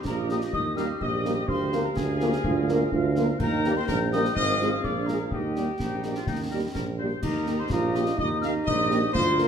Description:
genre	military-style march for wind band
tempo	125 BPM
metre	2/4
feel	straight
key	Eb major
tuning	A4 = 436 Hz
part	mellow trumpet section	melody	0.0-9.5 s	G4 to F5	-33 LUFS	left 1 dB	none
part	warm woodwind section	second line	0.0-9.5 s	Eb4 to G5	-35 LUFS	left 4 dB	none
part	concert snare drum, concert bass drum and clash cymbals	drums	0.0-9.5 s	none	-34 LUFS	left 1 dB	none
part	mellow euphonium	second line	0.1-7.0 s	C4 to G4	-32 LUFS	right 4 dB	none
part	mellow hollow wooden piccolo	second line	0.1-9.5 s	G5 to F6	-32 LUFS	left 2 dB	none
part	warm tuba	bass	0.1-9.5 s	Ab1 to Eb2	-28 LUFS	right 3 dB	none
part	mellow French horn section	accompaniment	0.3-9.5 s	Bb3 to Bb4	-33 LUFS	left 2 dB	none
part	mellow trombone section	sustained chords	0.3-9.5 s	Eb3 to F4	-32 LUFS	right 1 dB	none
room	wet large studio reverb, RT60 1.3 s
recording	none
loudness	-23 LUFS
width	side -8 dB against mid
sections	0.0-7.2 A section; 7.2-9.5 A section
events	none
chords	0.0 Eb; 1.5 Bb7/D; 3.4 Eb; 4.4 Fm/Ab; 4.8 Bb7; 5.3 Eb

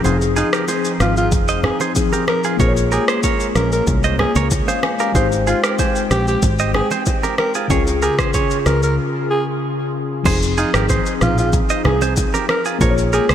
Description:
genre	afrobeats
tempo	94 BPM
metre	4/4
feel	straight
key	F minor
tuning	A4 = 440 Hz
part	mellow tine electric piano	accompaniment	0.0-13.3 s	Db3 to Ab5	-22 LUFS	left 5 dB	medium stereo tremolo
part	airy breathy pad	sustained chords	0.0-13.3 s	Db3 to G5	-26 LUFS	right 1 dB	chorus
part	direct-recorded clean electric guitar	riff	0.0-13.3 s	F4 to Eb5	-23 LUFS	right 6 dB	ping-pong delay
part	fingered electric bass	bass	0.0-13.3 s	F1 to Db2	-19 LUFS	equal	none
part	afro-pop drum kit	drums	0.0-13.3 s	crash cymbal, kick drum, rim click, shaker, toms	-20 LUFS	equal	overdrive, gated reverb
part	congas and bongos	percussion	0.0-13.0 s	none	-27 LUFS	right 3 dB	none
part	breathy alto saxophone	melody	0.4-13.3 s	Eb4 to Bb4	-23 LUFS	equal	ping-pong delay
room	moderate lush hall reverb, RT60 2.9 s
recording	bright 1980s-style digital production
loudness	-15 LUFS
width	side -10 dB against mid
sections	0.0-10.3 A section; 10.3-13.3 B section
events	break 0.0-1.3, 9.0-10.3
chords	0.0 Fm7; 2.6 Bbm7; 5.2 Abmaj7; 7.7 Db; 10.3 Fm7; 12.8 Bbm7

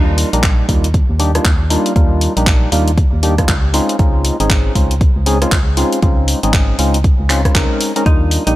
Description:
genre	deep house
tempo	118 BPM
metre	4/4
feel	swing 61% on 16ths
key	unclear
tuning	A4 = 438 Hz
part	percussive organ stab	stabs	0.0-8.6 s	G3 to Bb4	-18 LUFS	equal	chorus, sidechain pumping, tape echo
part	organ-like FM bass	bass	0.0-8.6 s	Ab1 to Eb2	-16 LUFS	equal	transformer saturation
part	deep house drum kit	drums	0.2-8.5 s	handclaps, hi-hat, rim click	-19 LUFS	equal	overdrive
part	electronic kick drum	drums	0.4-8.2 s	none	-14 LUFS	equal	none
part	vintage hollow-body jazz guitar	melody	8.1-8.6 s	Eb4	-20 LUFS	left 1 dB	none
room	little or no reverb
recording	dry, gritty hardware recording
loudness	-11 LUFS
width	side -16 dB against mid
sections	0.0-8.6 A section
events	none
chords	0.0 Ebmaj9; 3.7 Dbmaj9

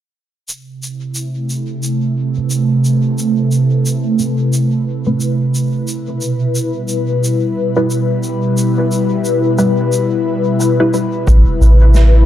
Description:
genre	ambient dub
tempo	89 BPM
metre	4/4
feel	swing 60% on 16ths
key	unclear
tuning	A4 = 440 Hz
part	airy breathy pad	sustained chords	0.5-12.3 s	B2 to B4	-15 LUFS	equal	chorus, phaser
part	shaker and snare drum	drums	0.5-12.1 s	none	-26 LUFS	right 1 dB	none
part	filtered dub chord stab	stabs	2.4-11.1 s	G3 to B4	-19 LUFS	equal	phaser, wide subtle chorus, vintage 12-bit sampler grit, dub echo
part	soft dub sub bass	bass	11.3-12.3 s	A1	-7 LUFS	equal	none
part	electronic kick drum	drums	11.3-11.4 s	none	-18 LUFS	equal	overdrive
room	moderate concert hall reverb, RT60 1.9 s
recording	dark, warm production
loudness	-13 LUFS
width	side -11 dB against mid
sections	0.5-11.3 A section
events	filter sweep on analog synth pad 0.5-11.3; filter sweep on synth stab 0.5-11.3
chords	0.5 Amadd9; 5.9 Em; 11.3 Amadd9

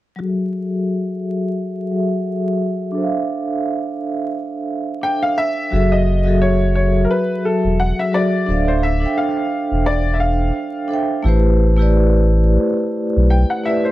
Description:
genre	hip hop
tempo	87 BPM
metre	4/4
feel	swing 57% on 16ths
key	unclear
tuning	A4 = 440 Hz
part	vibraphone with medium mallets	accompaniment	0.2-13.9 s	F#3 to G5	-19 LUFS	equal	low-pass filter
part	clear upright piano	melody	5.0-13.9 s	A4 to G5	-21 LUFS	left 2 dB	low-pass filter
part	sub bass with octave	bass	5.7-13.4 s	D1 to B1	-15 LUFS	equal	none
room	moderate small room reverb, RT60 0.6 s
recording	vinyl crackle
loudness	-16 LUFS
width	side -16 dB against mid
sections	0.2-5.7 A section; 5.7-13.9 B section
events	filter sweep on vibraphone 0.2-5.7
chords	0.2 F#m9; 3.0 Dm9; 5.7 F#m9; 8.5 Dm9; 11.2 Am9

